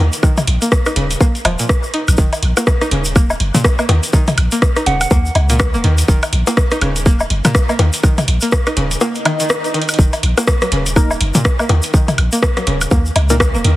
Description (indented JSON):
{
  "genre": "minimal techno",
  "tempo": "123 BPM",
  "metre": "4/4",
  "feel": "swing 59% on 16ths",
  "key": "Eb minor",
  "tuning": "A4 = 440 Hz",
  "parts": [
    { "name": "string-like resonator pluck", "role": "riff", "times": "0.0-13.7 s", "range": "Bb2 to Eb4", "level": "-21 LUFS", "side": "equal", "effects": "chorus, sidechain pumping, digital delay" },
    { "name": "punchy sub bass", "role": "bass", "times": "0.0-13.8 s", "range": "Eb1 to Eb2", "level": "-16 LUFS", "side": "equal", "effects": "sidechain pumping" },
    { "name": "booming analog drum machine", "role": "drums", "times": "0.1-13.8 s", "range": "hi-hat, rim click", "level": "-20 LUFS", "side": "equal", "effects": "none" },
    { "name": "egg shaker", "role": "percussion", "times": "0.1-13.6 s", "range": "none", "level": "-25 LUFS", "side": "left 2 dB", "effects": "none" },
    { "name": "electronic kick drum", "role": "drums", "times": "0.2-13.5 s", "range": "none", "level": "-13 LUFS", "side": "equal", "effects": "none" },
    { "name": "electronic woodblock, toms and bongos", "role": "percussion", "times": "0.2-13.5 s", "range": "none", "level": "-19 LUFS", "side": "left 2 dB", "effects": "overdrive, dub echo" },
    { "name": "soft synth bell", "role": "melody", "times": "4.9-5.1 s", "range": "Gb5", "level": "-22 LUFS", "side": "right 3 dB", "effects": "chorus, phaser, dub echo" },
    { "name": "swell", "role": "sound effects", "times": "9.2-10.0 s", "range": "none", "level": "-23 LUFS", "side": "equal", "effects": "none" },
    { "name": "percussive organ stab", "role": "stabs", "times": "11.0-13.4 s", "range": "Bb3 to Bb4", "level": "-22 LUFS", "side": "left 2 dB", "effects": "analog chorus, dub echo" }
  ],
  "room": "light reverb",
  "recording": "heavily compressed radio sound, multiband compression",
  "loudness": "-12 LUFS",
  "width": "side -16 dB against mid",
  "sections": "0.0-13.8 A section",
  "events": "swell 9.2-10.0; drum fill 9.7",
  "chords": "0.0 Eb5",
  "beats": "| 0.23 0.72 1.21 1.69 | 2.18 2.67 3.16 3.65 | 4.13 4.62 5.11 5.60 | 6.08 6.57 7.06 7.55 | 8.04 8.52 9.01 9.50 | 9.99 10.47 10.96 11.45 | 11.94 12.43 12.91 13.40"
}